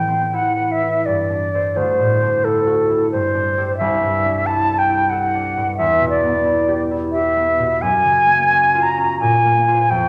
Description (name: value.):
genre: classical, impressionist duo for flute and harp.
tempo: 89 BPM.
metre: 3/4.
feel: uneven beats, rubato.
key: unclear.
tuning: A4 = 437 Hz.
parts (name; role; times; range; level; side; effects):
concert flute; melody; 0.0-10.1 s; A4 to Bb5; -18 LUFS; equal; none.
concert harp; accompaniment; 0.0-10.1 s; C2 to C5; -24 LUFS; equal; none.
room: wet recital hall reverb, RT60 1.5 s.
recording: none.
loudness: -17 LUFS.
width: mono.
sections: 0.0-10.1 A section.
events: none.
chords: 0.0 Am9; 1.1 Gsus24; 1.8 D9; 3.1 Gsus24; 3.8 C69; 5.8 Em7; 7.8 Gbmaj7; 9.2 Bbm9.